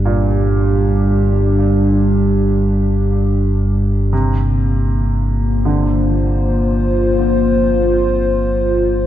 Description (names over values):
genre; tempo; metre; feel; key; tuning
dark ambient drone; free time; none; none; unclear; A4 = 443 Hz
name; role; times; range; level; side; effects
dark analog pad; sustained chords; 0.0-9.1 s; G3 to C5; -17 LUFS; left 1 dB; chorus
deep rumbling drone; drone; 0.0-9.1 s; G1 to G2; -16 LUFS; equal; built-in reverb
clear baby grand piano; arpeggios; 0.1-9.1 s; Bb2 to D3; -24 LUFS; right 2 dB; tape echo
room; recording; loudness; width
wet cathedral reverb, RT60 4.9 s; dark, warm production; -13 LUFS; side -12 dB against mid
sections
0.0-9.1 A section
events
none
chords
0.0 Gm; 4.1 Bbsus2